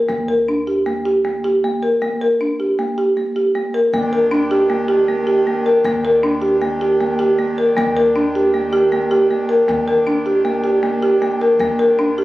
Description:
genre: contemporary instrumental, chamber music in an uneven meter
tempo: 156 BPM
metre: 5/4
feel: straight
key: Eb major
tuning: A4 = 440 Hz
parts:
  - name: upright bass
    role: bass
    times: 0.0-12.2 s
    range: Eb2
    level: -34 LUFS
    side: equal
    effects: none
  - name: folk marimba with soft mallets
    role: arpeggios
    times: 0.1-12.2 s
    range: Bb3 to Bb4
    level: -15 LUFS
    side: equal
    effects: none
  - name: pedal harmonium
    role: sustained chords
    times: 3.9-12.2 s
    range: Eb3 to G4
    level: -24 LUFS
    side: equal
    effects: none
room: light reverb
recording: recorded on a phone in the room, studio reverb, compression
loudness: -14 LUFS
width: side -17 dB against mid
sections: 0.0-3.9 A section; 3.9-12.2 A section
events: none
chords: 0.0 Eb; 3.9 Ebmaj7

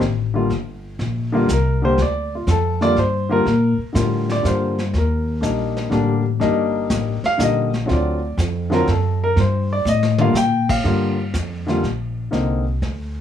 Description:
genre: jazz piano trio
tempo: 122 BPM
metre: 3/4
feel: swing 69% on 8ths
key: G minor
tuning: A4 = 439 Hz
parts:
  - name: upright bass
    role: bass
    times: 0.0-13.2 s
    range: G1 to Bb2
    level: -20 LUFS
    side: left 1 dB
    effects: none
  - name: vintage brush drum kit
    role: drums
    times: 0.0-13.2 s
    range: brushed snare drum, crash cymbal, hi-hat, kick drum, snare drum, toms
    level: -28 LUFS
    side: right 1 dB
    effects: none
  - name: warm grand piano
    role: melody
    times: 0.3-12.6 s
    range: D3 to G5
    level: -20 LUFS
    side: left 1 dB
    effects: none
room: little or no reverb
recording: rough home demo mix, small room ambience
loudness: -17 LUFS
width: side -9 dB against mid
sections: 0.0-10.8 A section; 10.8-13.2 A section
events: grand piano solo 0.0-13.2; drum fill 9.9-10.3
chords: 0.5 Gm7; 4.9 Ebmaj7; 7.9 D7#9; 9.4 Gm7; 12.3 Cm9

